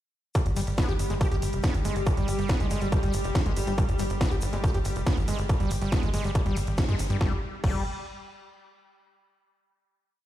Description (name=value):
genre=psychedelic trance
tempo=140 BPM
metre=4/4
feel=straight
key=unclear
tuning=A4 = 440 Hz
part: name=pulsing gated texture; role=sustained chords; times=0.4-7.3 s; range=G3 to G4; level=-35 LUFS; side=equal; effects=chorus, built-in reverb, sidechain pumping
part: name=overdriven acid bass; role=riff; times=0.4-7.8 s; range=F3 to G4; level=-34 LUFS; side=moving between left 6 dB and right 6 dB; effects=distortion, auto-pan, vintage 12-bit sampler grit, sidechain pumping, dub echo
part: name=electronic kick drum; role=drums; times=0.4-7.7 s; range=none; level=-25 LUFS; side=equal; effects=distortion, overdrive, small room ambience
part: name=techno drum kit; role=drums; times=0.4-7.7 s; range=crash cymbal, hi-hat, ride cymbal, snare drum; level=-36 LUFS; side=equal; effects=overdrive, small room ambience
part: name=tube shaker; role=percussion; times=0.4-7.2 s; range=none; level=-44 LUFS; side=left 4 dB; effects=none
part: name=tight sequencer bass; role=bass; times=0.5-7.8 s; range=F1 to G2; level=-28 LUFS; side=equal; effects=none
room=light reverb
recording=played on a big sound system in a bare room, large studio reverb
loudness=-24 LUFS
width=side -13 dB against mid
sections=0.4-7.2 drop; 7.2-8.9 final note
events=drop 0.4-7.2; band accent 6.8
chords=0.4 Fmadd9 (rootless); 7.2 N.C.